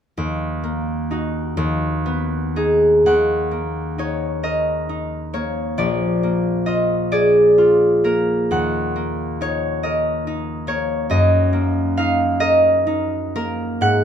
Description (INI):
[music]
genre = classical, solo harp piece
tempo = 38-47 BPM (dotted quarters)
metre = 6/8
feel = rubato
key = Eb minor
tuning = A4 = 441 Hz
[part]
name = concert harp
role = solo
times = 0.2-14.0 s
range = Bb1 to Gb5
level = -17 LUFS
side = equal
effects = none
[sound]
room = moderate studio ambience, RT60 0.5 s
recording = minimal, uncompressed stereo recording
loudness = -17 LUFS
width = side -8 dB against mid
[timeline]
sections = 0.2-3.1 A section; 3.1-14.0 B section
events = none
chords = 0.2 Ebm; 1.6 Abm/Eb; 3.1 Ebm; 5.8 Bb7; 8.5 Ebm; 11.1 Ebm/Gb